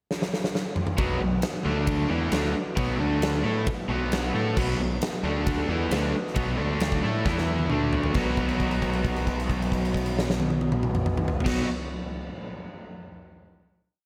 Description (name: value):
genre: classic rock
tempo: 134 BPM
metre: 4/4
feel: straight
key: unclear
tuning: A4 = 440 Hz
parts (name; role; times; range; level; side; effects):
- huge arena drum kit; drums; 0.1-11.6 s; crash cymbal, kick drum, ride cymbal, snare drum, toms; -30 LUFS; equal; none
- mellow tonewheel organ; sustained chords; 1.0-11.7 s; A3 to E5; -40 LUFS; equal; none
- crunchy overdriven guitar; riff; 1.0-11.7 s; B2 to A4; -33 LUFS; equal; none
- overdriven semi-hollow guitar; riff; 1.0-11.7 s; B2 to A4; -32 LUFS; equal; none
- growling fingered electric bass; bass; 1.0-11.6 s; B1 to A2; -33 LUFS; equal; overdrive
room: moderate lush hall reverb, RT60 1.9 s, small room ambience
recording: big arena sound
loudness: -26 LUFS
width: mono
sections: 0.0-1.0 pickup bar; 1.0-8.1 riff; 8.1-11.7 final chord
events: drum fill 0.1-1.0, 7.3-8.1; held note 8.1-11.5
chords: 0.0 N.C.; 1.0 B; 1.7 D5; 2.1 B; 3.0 D5; 3.4 B; 5.2 D5; 5.7 B; 6.6 D5; 7.0 A5; 7.3 E5; 7.7 D5; 8.1 B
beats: 0.09 0.54 | 0.98 1.43 1.88 2.32 | 2.77 3.22 3.67 4.11 | 4.56 5.01 5.46 5.91 | 6.36 6.80 7.25 7.70 | 8.15 8.60 9.04 9.49 | 9.94 10.39 10.83 11.28